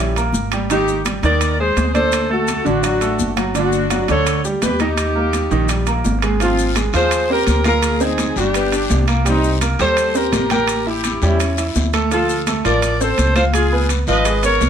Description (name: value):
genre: latin, salsa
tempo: 168 BPM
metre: 4/4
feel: straight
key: unclear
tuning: A4 = 441 Hz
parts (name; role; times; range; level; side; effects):
- mellow horn section; melody; 0.0-14.7 s; C4 to D#5; -18 LUFS; left 1 dB; none
- bright baby grand piano; accompaniment; 0.0-14.7 s; D3 to G5; -21 LUFS; right 3 dB; none
- upright bass; bass; 0.0-14.7 s; G1 to E2; -21 LUFS; equal; none
- congas; percussion; 0.2-14.7 s; none; -25 LUFS; left 2 dB; none
- maracas; percussion; 0.2-14.7 s; none; -31 LUFS; left 8 dB; none
- timbales; percussion; 0.2-14.7 s; none; -26 LUFS; right 6 dB; none
- guiro; percussion; 6.4-14.7 s; none; -31 LUFS; left 9 dB; none
room: moderate studio reverb, RT60 0.7 s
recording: none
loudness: -15 LUFS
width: side -8 dB against mid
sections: 0.0-14.7 A section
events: none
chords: 0.0 Eb7b9 (rootless); 0.7 Abmaj9; 2.1 D; 3.6 Gsus2; 5.0 Eb; 6.4 Ab69; 7.8 Dm7b5; 8.5 G; 9.3 Cm7; 10.7 A7; 12.1 Dm7; 13.5 C#9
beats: 0.34 | 0.70 1.06 1.41 1.77 | 2.12 2.48 2.84 3.19 | 3.55 3.91 4.26 4.62 | 4.98 5.33 5.69 6.05 | 6.40 6.76 7.12 7.47 | 7.83 8.19 8.54 8.90 | 9.26 9.62 9.97 10.33 | 10.69 11.04 11.40 11.76 | 12.11 12.47 12.83 13.18 | 13.54 13.90 14.25 14.61